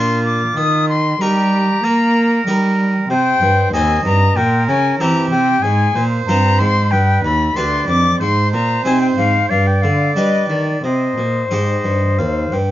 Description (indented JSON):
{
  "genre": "classical, baroque-style sonata movement with continuo",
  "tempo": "94 BPM",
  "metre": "4/4",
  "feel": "rubato",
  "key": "Eb major, C minor from 3.1 s",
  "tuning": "A4 = 436 Hz",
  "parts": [
    { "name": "silver concert flute", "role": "melody", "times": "0.0-12.6 s", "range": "C5 to Eb6", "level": "-18 LUFS", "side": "left 4 dB", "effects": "none" },
    { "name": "clear oboe", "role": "second line", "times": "0.0-12.7 s", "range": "F4 to G5", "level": "-22 LUFS", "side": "right 5 dB", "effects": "none" },
    { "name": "harpsichord", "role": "accompaniment", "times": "0.0-12.7 s", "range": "D2 to C5", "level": "-21 LUFS", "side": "equal", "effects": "none" },
    { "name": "rich cello", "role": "bass", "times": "0.0-12.7 s", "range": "D2 to Bb3", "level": "-17 LUFS", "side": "right 1 dB", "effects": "none" }
  ],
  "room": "light reverb",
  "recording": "dark, warm production, nothing above 7.4 kHz",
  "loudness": "-13 LUFS",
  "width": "side -13 dB against mid",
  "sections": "0.0-12.7 A section",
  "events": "none",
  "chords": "0.0 Bb; 0.6 Eb; 3.1 Cm; 4.4 C7/Bb; 5.6 Fm/Ab; 6.9 G; 8.2 Ab; 9.5 G; 10.8 Cm"
}